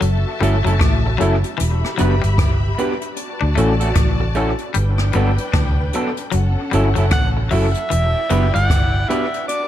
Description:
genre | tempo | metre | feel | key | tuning
lovers rock reggae | 76 BPM | 4/4 | swing 61% on 16ths | E dorian | A4 = 440 Hz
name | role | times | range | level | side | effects
clear alto saxophone | melody | 0.0, 7.1-9.7 s | D5 to F#5 | -23 LUFS | right 2 dB | tape echo
muted studio string section | second line | 0.0-9.7 s | C#4 to B5 | -27 LUFS | left 2 dB | none
twangy electric guitar | riff | 0.0-8.8 s | E3 to D4 | -26 LUFS | left 7 dB | dub echo
vintage muted fingered electric bass | bass | 0.0-9.0 s | E1 to D2 | -18 LUFS | equal | none
jazz brush drum kit | drums | 0.0-9.7 s | hi-hat, kick drum, rim click | -21 LUFS | equal | gated reverb, dub echo
tine electric piano | accompaniment | 0.4-9.3 s | B3 to B4 | -26 LUFS | left 2 dB | dub echo
electric guitar through a small old amp | stabs | 0.4-9.2 s | F#3 to B4 | -25 LUFS | right 3 dB | none
room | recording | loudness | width
studio reverb | none | -15 LUFS | side -12 dB against mid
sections
0.0-9.7 A section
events
none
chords
0.0 F#m7; 1.6 Em7; 3.2 Dmaj7; 4.7 Gmaj9; 6.3 F#m7; 7.9 Em7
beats
0.01 0.80 | 1.59 2.38 3.17 3.96 | 4.75 5.54 6.33 7.12 | 7.91 8.70 9.48

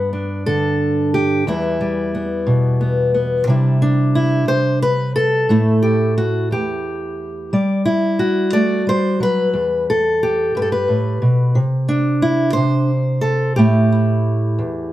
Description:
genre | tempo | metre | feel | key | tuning
folk, solo fingerstyle acoustic guitar | 60 BPM (dotted quarters) | 6/8 | straight | G major | A4 = 440 Hz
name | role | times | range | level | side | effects
fingerpicked steel-string acoustic guitar | solo | 0.0-14.9 s | E2 to D5 | -15 LUFS | equal | none
room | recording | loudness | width
moderate studio reverb, RT60 0.5 s | heard from further back in the room | -15 LUFS | side -14 dB against mid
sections
0.0-14.9 A section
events
none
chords
0.0 Gadd9; 1.5 Em; 3.5 Cadd9; 5.5 A5; 7.5 Gsus2; 9.5 Em; 11.6 N.C.; 13.6 A5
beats
0.46 | 1.47 2.48 | 3.48 4.49 | 5.49 6.51 | 7.53 8.54 | 9.55 10.55 | 11.56 12.56 | 13.58 14.60

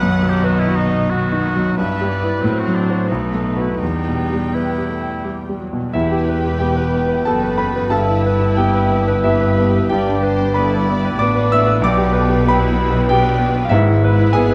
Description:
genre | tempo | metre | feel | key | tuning
classical, romantic movement for piano and orchestra | 81-97 BPM | 3/4 | rubato | E minor | A4 = 437 Hz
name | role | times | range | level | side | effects
clear concert grand piano | melody | 0.0-14.5 s | B1 to E6 | -20 LUFS | equal | none
muted symphonic violin section | second line | 0.0-14.5 s | E4 to G5 | -33 LUFS | equal | none
warm oboe | second line | 0.0-14.5 s | D4 to G5 | -29 LUFS | equal | none
muted symphonic viola section | accompaniment | 0.0-14.5 s | D#3 to G4 | -30 LUFS | equal | none
muted symphonic cello section | bass | 0.0-14.5 s | E2 to B2 | -25 LUFS | equal | none
muted symphonic violin section | melody | 5.9-14.5 s | B4 to D5 | -34 LUFS | equal | none
small flute group | second line | 5.9-14.5 s | E5 to E6 | -30 LUFS | equal | none
mellow bassoon | accompaniment | 5.9-14.5 s | B3 | -28 LUFS | equal | none
muted symphonic double bass section | bass | 5.9-14.5 s | E1 to B1 | -24 LUFS | equal | none
room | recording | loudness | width
moderate scoring stage reverb, RT60 1.8 s | none | -17 LUFS | mono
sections
0.0-5.9 A section; 5.9-14.5 B section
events
none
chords
0.0 B; 1.8 Em/G; 2.4 F#dim/A; 3.1 B7; 3.8 Em; 7.9 Em/G; 9.9 G; 11.8 G/B; 13.7 E/G#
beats
0.44 1.09 | 1.77 2.42 3.09 | 3.81 4.54 5.24 | 5.94 6.60 7.26 | 7.92 8.57 9.22 | 9.89 10.54 11.18 | 11.82 12.45 13.09 | 13.72 14.35

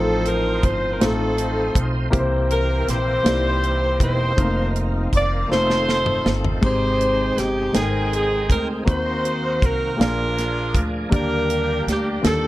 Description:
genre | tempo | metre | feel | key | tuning
slow gospel | 53 BPM (dotted quarters) | 6/8 | straight | unclear | A4 = 439 Hz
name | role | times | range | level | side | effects
edgy alto saxophone | melody | 0.0-12.5 s | G4 to D5 | -24 LUFS | right 2 dB | none
warm saxophone section | melody | 0.0-12.5 s | C4 to D5 | -26 LUFS | left 2 dB | none
warm grand piano | accompaniment | 0.0-12.5 s | A2 to G5 | -25 LUFS | left 2 dB | none
bright tonewheel organ | sustained chords | 0.0-12.5 s | Eb3 to G5 | -30 LUFS | right 2 dB | fast rotary speaker, chorus vibrato
upright bass | bass | 0.0-12.5 s | E1 to Eb2 | -24 LUFS | equal | none
tight funk drum kit | drums | 0.3-12.4 s | hi-hat, kick drum, snare drum, splash cymbal, toms | -21 LUFS | equal | none
room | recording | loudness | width
light reverb, studio ambience | dark, warm production | -18 LUFS | side -16 dB against mid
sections
0.0-12.5 A section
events
drum fill 5.5-6.6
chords
0.0 F7; 2.1 C7; 4.4 F7sus4; 5.5 F7; 6.6 Abmaj7; 8.9 Ebm6; 10.0 Bb7; 11.1 Ebmaj7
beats
1.00 | 2.13 3.25 | 4.38 5.50 | 6.63 7.75 | 8.88 10.00 | 11.12 12.24

